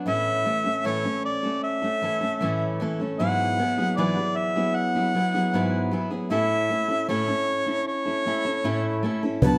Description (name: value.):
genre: acoustic folk duo or small band.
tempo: 77 BPM.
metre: 4/4.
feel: straight.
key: unclear.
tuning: A4 = 437 Hz.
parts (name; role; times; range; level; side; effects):
picked steel-string acoustic guitar; accompaniment; 0.0-9.6 s; G#2 to B4; -28 LUFS; equal; none.
mellow harmonica; melody; 0.1-9.6 s; C#5 to A5; -28 LUFS; equal; none.
dark upright piano; arpeggios; 9.4-9.6 s; B3; -26 LUFS; equal; none.
cajon; percussion; 9.4-9.6 s; none; -23 LUFS; equal; none.
room: moderate large studio reverb, RT60 1.4 s.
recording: dark, warm production.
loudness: -25 LUFS.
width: mono.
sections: 0.0-9.4 A section.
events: none.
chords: 0.1 A; 3.2 Eadd9/G#; 6.3 A.